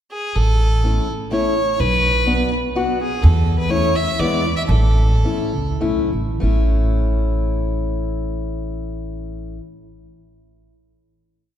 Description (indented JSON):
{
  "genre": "alpine folk, alpine dance band",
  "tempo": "96-127 BPM",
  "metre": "3/4",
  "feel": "rubato",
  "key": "A major",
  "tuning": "A4 = 439 Hz",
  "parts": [
    { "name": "clear fiddle", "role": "melody", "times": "0.1-5.8 s", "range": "G#4 to E5", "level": "-22 LUFS", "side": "right 1 dB", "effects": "none" },
    { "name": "upright bass", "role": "bass", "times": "0.4-9.6 s", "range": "A1 to E2", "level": "-18 LUFS", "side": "right 1 dB", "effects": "none" },
    { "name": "fingerpicked steel-string acoustic guitar", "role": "accompaniment", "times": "0.8-9.6 s", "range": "G#3 to F#4", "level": "-23 LUFS", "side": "left 4 dB", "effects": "none" }
  ],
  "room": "wet church reverb, RT60 2.9 s",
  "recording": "recorded in a church or concert hall",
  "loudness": "-16 LUFS",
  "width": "side -10 dB against mid",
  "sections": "0.0-0.3 pickup bar; 0.3-6.4 A section; 6.4-10.1 final chord",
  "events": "slowing down 3.2-6.4",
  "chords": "0.3 A; 1.8 Bm; 3.2 A/E; 4.2 E7; 4.7 Aadd9; 6.4 A",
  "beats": "| 0.34 0.83 1.31 | 1.79 2.27 2.75 | 3.22 3.70 4.19 | 4.70 5.23 5.80 | 6.41 7.03 7.64 | 8.24 8.85 9.45"
}